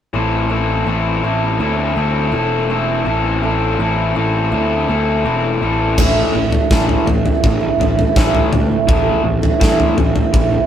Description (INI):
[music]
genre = quiet-loud alternative rock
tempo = 82 BPM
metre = 4/4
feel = straight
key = A minor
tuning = A4 = 441 Hz
[part]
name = picked old ladder-braced acoustic guitar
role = arpeggios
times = 0.1-10.7 s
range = A2 to E4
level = -21 LUFS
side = right 8 dB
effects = none
[part]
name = raw garage guitar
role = riff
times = 0.1-10.7 s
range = A2 to A4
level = -18 LUFS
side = left 3 dB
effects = overdrive
[part]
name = fuzz picked electric bass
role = bass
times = 0.1-10.6 s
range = E1 to E2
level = -20 LUFS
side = equal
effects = overdrive
[part]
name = huge arena drum kit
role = drums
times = 6.0-10.5 s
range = crash cymbal, kick drum, snare drum, toms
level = -15 LUFS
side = equal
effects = none
[sound]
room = light reverb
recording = band playing live in one room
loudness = -13 LUFS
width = side -9 dB against mid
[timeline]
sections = 0.1-6.0 A section; 6.0-10.7 B section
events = none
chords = 0.1 Am